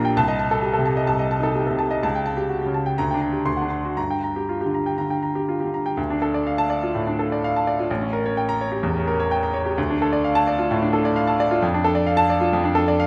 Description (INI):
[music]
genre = classical, virtuoso piano study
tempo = 116-133 BPM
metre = 4/4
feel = rubato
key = D minor from 6.0 s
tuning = A4 = 440 Hz
[part]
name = bright baby grand piano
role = solo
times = 0.0-13.1 s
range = A1 to C6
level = -22 LUFS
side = equal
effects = none
[sound]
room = wet recital hall reverb, RT60 1.7 s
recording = dark, warm production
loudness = -22 LUFS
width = mono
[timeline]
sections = 0.0-6.0 A section; 6.0-13.1 B section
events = none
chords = 0.2 Adim/C; 2.0 A7/C#; 3.0 Gm/D; 3.5 D7; 4.0 Gm; 6.0 Dm; 7.9 A7b9; 9.8 Dm; 11.6 Dm/F